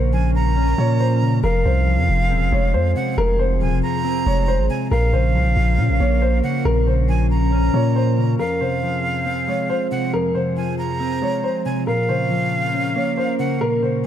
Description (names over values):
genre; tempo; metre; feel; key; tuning
hip hop; 138 BPM; 4/4; half-time; F minor; A4 = 440 Hz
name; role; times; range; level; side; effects
dark concert grand piano; melody; 0.0-14.1 s; Bb4 to Db5; -24 LUFS; equal; none
mellow electric guitar; accompaniment; 0.0-14.1 s; F2 to Db4; -23 LUFS; left 1 dB; spring reverb
glassy FM pad; sustained chords; 0.0-14.1 s; F3 to Bb4; -28 LUFS; right 1 dB; ensemble chorus, built-in reverb
long sustained 808-style bass; bass; 0.0-8.4 s; Eb1 to Bb2; -18 LUFS; equal; none
breathy bright jazz flute; second line; 0.1-14.1 s; F5 to Bb5; -25 LUFS; right 3 dB; ping-pong delay
room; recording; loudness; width
studio reverb; dark, warm production; -17 LUFS; side -10 dB against mid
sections
0.0-8.4 A section; 8.4-14.1 B section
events
none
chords
0.0 Bbm; 1.4 Fm; 4.9 Bbm; 8.4 Fm; 11.9 Bbm